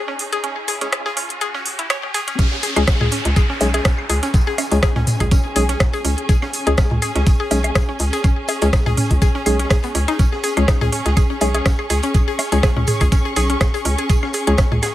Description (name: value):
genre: minimal techno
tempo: 123 BPM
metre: 4/4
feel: swing 55% on 16ths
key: unclear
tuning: A4 = 440 Hz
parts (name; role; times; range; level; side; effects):
- riser and downlifter; sound effects; 0.0-6.3 s; none; -28 LUFS; equal; none
- warm studio string section; texture; 0.0-14.9 s; C#4 to C#6; -28 LUFS; right 1 dB; sidechain pumping
- mallet-like synth pluck; riff; 0.1-14.9 s; B3 to C#5; -24 LUFS; left 1 dB; chorus, sidechain pumping, digital delay
- garage drum kit; drums; 0.2-14.9 s; hi-hat, rim click; -24 LUFS; equal; high-pass filter on hats, high-pass filter on snare
- percussive organ stab; stabs; 0.8-14.5 s; G#3 to G#4; -23 LUFS; left 2 dB; chorus, tape echo
- crunchy breakbeat drum kit; drums; 2.4-14.9 s; hi-hat, snare drum, tambourine; -34 LUFS; equal; sidechain pumping on hats, high-pass filter on hats, high-pass filter on snare, sidechain pumping on perc, high-pass filter on perc, high-pass filter on room
- electronic kick drum; drums; 2.4-14.7 s; none; -16 LUFS; equal; none
- flickering grainy texture; texture; 3.1-14.9 s; G#4; -34 LUFS; left 1 dB; none
- hollow knocking FM bass; bass; 2.8-14.8 s; B1 to C#2; -19 LUFS; equal; sidechain pumping
- electronic claves, toms and woodblock; percussion; 2.8-14.9 s; none; -23 LUFS; equal; tape echo
room: little or no reverb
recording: high-pass filter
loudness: -15 LUFS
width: side -14 dB against mid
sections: 0.0-2.4 A section; 2.4-14.9 B section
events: build-up 0.0-2.4; riser 0.0-2.4; filter sweep on synth stab 0.0-2.4; drop 2.4-14.9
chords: 0.0 C#5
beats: | 0.44 0.93 1.41 1.90 | 2.39 2.88 3.36 3.85 | 4.34 4.83 5.32 5.80 | 6.29 6.78 7.27 7.75 | 8.24 8.73 9.22 9.71 | 10.19 10.68 11.17 11.66 | 12.14 12.63 13.12 13.61 | 14.10 14.58